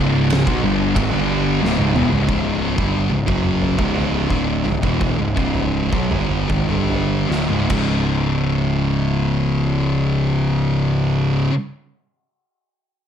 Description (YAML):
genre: stoner and doom metal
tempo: 69-91 BPM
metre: 4/4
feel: straight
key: unclear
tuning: A4 = 436 Hz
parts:
  - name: thick fuzz guitar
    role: riff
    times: 0.0-11.5 s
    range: C#2 to G3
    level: -21 LUFS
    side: left 7 dB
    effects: distortion
  - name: thick fuzz guitar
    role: riff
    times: 0.0-11.5 s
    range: C#2 to G3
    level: -21 LUFS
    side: right 6 dB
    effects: distortion
  - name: thick fuzz guitar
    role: riff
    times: 0.0-2.3 s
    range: C#2 to G3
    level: -23 LUFS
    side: equal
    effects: distortion
  - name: fuzz picked electric bass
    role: bass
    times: 0.0-11.5 s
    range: C#1 to B1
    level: -24 LUFS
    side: equal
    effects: overdrive
  - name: oversized low-tuned drum kit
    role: drums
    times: 0.3-7.9 s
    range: crash cymbal, kick drum, ride cymbal, snare drum, toms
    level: -24 LUFS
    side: right 1 dB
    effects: none
room: light reverb, small room ambience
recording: none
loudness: -16 LUFS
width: side -8 dB against mid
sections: 0.0-2.3 A section; 2.3-8.1 B section; 8.1-11.6 C section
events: drum fill 1.6-2.3, 7.3-8.1; slowing down 2.3-8.1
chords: 0.0 C#m; 7.7 C#5